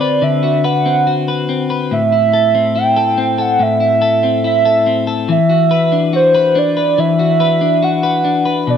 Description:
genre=dream pop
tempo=71 BPM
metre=4/4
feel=straight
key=unclear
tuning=A4 = 440 Hz
part: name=warbly nostalgic lead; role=melody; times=0.0-8.8 s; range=C5 to G5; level=-14 LUFS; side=right 3 dB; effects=chorus, tape echo
part: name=clean electric guitar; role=arpeggios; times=0.0-8.8 s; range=A2 to B4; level=-15 LUFS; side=left 5 dB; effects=lush chorus
room=moderate plate reverb, RT60 2.9 s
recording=dark, warm production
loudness=-11 LUFS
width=side -8 dB against mid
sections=0.0-8.8 A section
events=none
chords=0.0 D13; 1.9 Am

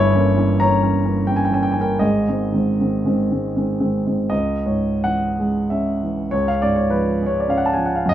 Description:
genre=classical, romantic character piece for solo piano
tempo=76-102 BPM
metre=3/4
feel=rubato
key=C# minor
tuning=A4 = 439 Hz
part: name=dark grand piano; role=solo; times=0.0-8.1 s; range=G1 to Bb5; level=-17 LUFS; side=equal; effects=none
room=little or no reverb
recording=dark, warm production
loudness=-17 LUFS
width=side -11 dB against mid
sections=0.0-4.3 A section; 4.3-8.1 B section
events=none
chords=0.0 Gdim7; 2.0 G#; 4.3 C#m; 6.3 C#

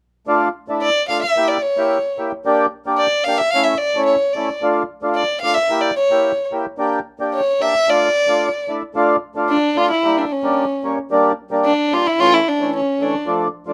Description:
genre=klezmer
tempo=111 BPM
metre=2/4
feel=straight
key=D harmonic minor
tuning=A4 = 440 Hz
part: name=mellow accordion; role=accompaniment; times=0.3-13.7 s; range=E3 to G4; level=-21 LUFS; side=equal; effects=none
part: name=dark violin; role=melody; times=0.8-13.3 s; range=C#4 to F5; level=-19 LUFS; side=equal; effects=none
room=light reverb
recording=close, detailed microphones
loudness=-18 LUFS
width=mono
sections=0.3-9.0 A section; 9.0-13.7 A section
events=none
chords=0.3 Dm; 1.4 Edim; 2.5 Gm; 3.5 A; 4.6 Dm; 5.7 Edim; 6.8 Gm; 7.9 Dm; 10.0 Edim; 11.1 Gm; 12.2 A

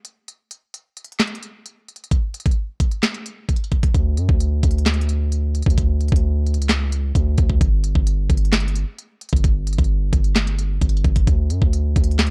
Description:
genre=hip hop, trap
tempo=131 BPM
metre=4/4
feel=half-time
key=D major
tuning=A4 = 440 Hz
part: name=trap drum kit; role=drums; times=0.0-12.3 s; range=handclaps, hi-hat, kick drum, snare drum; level=-21 LUFS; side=equal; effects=overdrive
part: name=long sustained 808-style bass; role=bass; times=3.9-12.3 s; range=G1 to F#2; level=-21 LUFS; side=equal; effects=none
room=little or no reverb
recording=dark, warm production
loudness=-20 LUFS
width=mono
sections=0.0-3.9 A section; 3.9-12.3 B section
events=none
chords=none

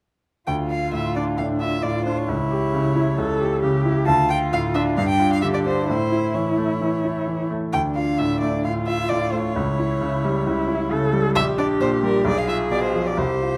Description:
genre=quick classical-period movement for piano trio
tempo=133 BPM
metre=4/4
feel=straight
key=D minor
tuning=A4 = 440 Hz
part: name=clear violin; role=melody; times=0.5-13.6 s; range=Bb4 to A5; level=-28 LUFS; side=equal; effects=none
part: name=rich cello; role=second line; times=0.5-13.6 s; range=D4 to A4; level=-27 LUFS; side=equal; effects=none
part: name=bright grand piano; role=accompaniment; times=0.5-13.6 s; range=Bb1 to G4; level=-24 LUFS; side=equal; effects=none
room=moderate large studio reverb, RT60 1.1 s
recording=none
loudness=-22 LUFS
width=mono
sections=0.5-13.6 A section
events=none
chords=0.5 Dm; 2.3 A7/C#; 4.1 Dm; 5.0 G5; 5.9 A; 7.7 Dm; 9.6 A7/C#; 11.4 Gm/Bb; 12.3 Bdim7

